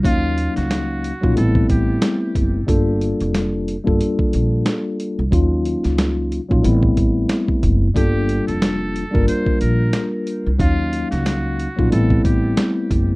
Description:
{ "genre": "hip hop, boom-bap hip-hop", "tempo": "91 BPM", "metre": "4/4", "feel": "swing 57% on 16ths", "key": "unclear", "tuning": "A4 = 440 Hz", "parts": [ { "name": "trumpet with metal mute", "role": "melody", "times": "0.0-2.2, 8.0-12.7 s", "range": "F4 to C5", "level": "-30 LUFS", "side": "right 1 dB", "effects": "high-pass filter, low-pass filter, tape echo" }, { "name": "mellow tine electric piano", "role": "accompaniment", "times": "0.0-13.2 s", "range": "Gb3 to F5", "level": "-20 LUFS", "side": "left 1 dB", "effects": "medium stereo tremolo, cassette tape, high-pass filter, low-pass filter" }, { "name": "upright bass", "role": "bass", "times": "0.0-13.2 s", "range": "F1 to Eb2", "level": "-20 LUFS", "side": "equal", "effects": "none" }, { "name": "boom bap sampler-style drum kit", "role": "drums", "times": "0.0-13.1 s", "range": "hi-hat, kick drum, snare drum", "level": "-20 LUFS", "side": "equal", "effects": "none" }, { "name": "finger snaps", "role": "percussion", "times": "0.7-12.8 s", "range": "none", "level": "-41 LUFS", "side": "right 6 dB", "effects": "none" } ], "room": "light reverb", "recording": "rough home demo mix", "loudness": "-16 LUFS", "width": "side -22 dB against mid", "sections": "0.0-13.2 A section", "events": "none", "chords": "0.0 Ebm9; 1.4 Am9; 2.7 Gm9; 5.3 Ebm9; 6.6 Am9; 8.0 Gm9; 10.6 Ebm9; 11.9 Am9", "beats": "| 0.05 0.71 1.37 2.02 | 2.69 3.34 4.00 4.66 | 5.32 5.98 6.64 7.30 | 7.96 8.62 9.28 9.94 | 10.60 11.26 11.91 12.57" }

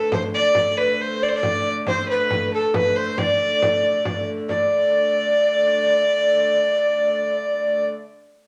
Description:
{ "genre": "medieval dance", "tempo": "92 BPM (dotted quarters)", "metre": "6/8", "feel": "straight", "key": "unclear", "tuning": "A4 = 440 Hz", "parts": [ { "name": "clear fiddle", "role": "melody", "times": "0.0-7.9 s", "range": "A4 to D5", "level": "-26 LUFS", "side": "equal", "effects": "none" }, { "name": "breathy mellow bass recorder", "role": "second line", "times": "0.0-7.9 s", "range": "A4 to D5", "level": "-22 LUFS", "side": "equal", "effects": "none" }, { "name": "warm hurdy-gurdy", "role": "drone", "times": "0.0-7.9 s", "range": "D3 to A3", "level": "-33 LUFS", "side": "equal", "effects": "none" }, { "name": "frame drum", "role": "percussion", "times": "0.1-4.7 s", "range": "none", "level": "-31 LUFS", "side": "equal", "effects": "none" } ], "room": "wet large studio reverb, RT60 0.9 s", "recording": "none", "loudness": "-20 LUFS", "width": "mono", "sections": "0.0-4.5 A section; 4.5-7.1 B section", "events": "none", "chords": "none", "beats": "| 0.56 1.22 | 1.87 2.52 | 3.18 3.83 | 4.49 5.14 | 5.79 6.45" }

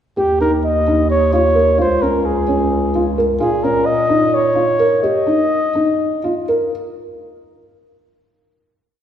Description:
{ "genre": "contemporary instrumental, chamber music in an uneven meter", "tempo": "259 BPM (eighths)", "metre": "7/8", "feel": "straight", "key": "Eb mixolydian", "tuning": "A4 = 440 Hz", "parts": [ { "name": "mellow flugelhorn", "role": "melody", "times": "0.2-6.4 s", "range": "G4 to Eb5", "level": "-17 LUFS", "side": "equal", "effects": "none" }, { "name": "felt-muted upright piano", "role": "arpeggios", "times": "0.2-6.7 s", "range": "Db4 to Bb4", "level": "-18 LUFS", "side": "right 1 dB", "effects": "none" }, { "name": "dark bass clarinet", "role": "bass", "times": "0.2-5.0 s", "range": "Db2 to Bb2", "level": "-20 LUFS", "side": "left 1 dB", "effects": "none" } ], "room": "wet concert hall reverb, RT60 2.3 s", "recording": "heard from further back in the room", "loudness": "-13 LUFS", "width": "side -9 dB against mid", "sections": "0.2-6.7 A section", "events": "slowing down 3.4-6.7", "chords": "0.2 Eb7; 1.8 Db; 3.4 Bbm; 5.0 Ebsus2", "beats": "| 0.17 0.40 0.64 0.87 1.11 1.34 1.57 | 1.80 2.03 2.26 2.49 2.72 2.95 3.18 | 3.41 3.63 3.86 4.09 4.32 4.55 4.79 | 5.02 5.26 5.50 5.74 5.98 6.23 6.47" }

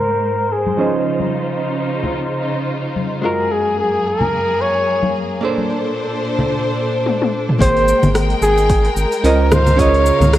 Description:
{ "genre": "sunset chillout", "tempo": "110 BPM", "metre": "4/4", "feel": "swing 56% on 16ths", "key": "Ab mixolydian", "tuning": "A4 = 438 Hz", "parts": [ { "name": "warm flugelhorn", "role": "melody", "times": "0.0-10.3 s", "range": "Ab4 to Db5", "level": "-17 LUFS", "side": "equal", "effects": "ping-pong delay" }, { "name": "archtop guitar, miked and amplified", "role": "accompaniment", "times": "0.0-10.4 s", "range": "F3 to G5", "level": "-22 LUFS", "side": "moving between left 5 dB and right 5 dB", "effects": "auto-pan" }, { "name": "rich symphonic string section", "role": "sustained chords", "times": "0.0-10.4 s", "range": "Gb2 to G5", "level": "-21 LUFS", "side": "equal", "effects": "low-pass filter" }, { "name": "deep house drum kit", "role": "drums", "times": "0.2-10.4 s", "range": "cabasa, congas, hi-hat, rim click, toms", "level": "-18 LUFS", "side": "left 1 dB", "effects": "overdrive, low-pass filter on perc, low-pass filter on toms, low-pass filter on hats, low-pass filter on snare" }, { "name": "congas", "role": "percussion", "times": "0.7-6.5 s", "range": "none", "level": "-24 LUFS", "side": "left 2 dB", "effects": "none" }, { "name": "round analog bass", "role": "bass", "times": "7.6-10.4 s", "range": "Ab1 to Db2", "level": "-16 LUFS", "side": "equal", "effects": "none" }, { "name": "electronic kick drum", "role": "drums", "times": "7.6-9.9 s", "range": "none", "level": "-17 LUFS", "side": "equal", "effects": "overdrive" } ], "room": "moderate plate reverb, RT60 1.9 s, digital ambience", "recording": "worn, warbling old tape, cassette tape, warbly pitch drift, low-pass filter", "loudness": "-14 LUFS", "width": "side -13 dB against mid", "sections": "0.0-7.6 A section; 7.6-10.4 B section", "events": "filter sweep on string section 0.0-7.6; filter sweep 0.0-7.6; drum fill 7.1-7.6", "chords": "0.0 Abmaj9; 0.8 Dbmaj9; 3.2 Gbmaj9; 5.4 Bbmaj9; 7.6 Abmaj9; 9.5 Dbmaj9", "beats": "0.51 | 1.06 1.60 2.15 2.69 | 3.24 3.79 4.33 4.88 | 5.42 5.97 6.51 7.06 | 7.60 8.15 8.69 9.24 | 9.79 10.33" }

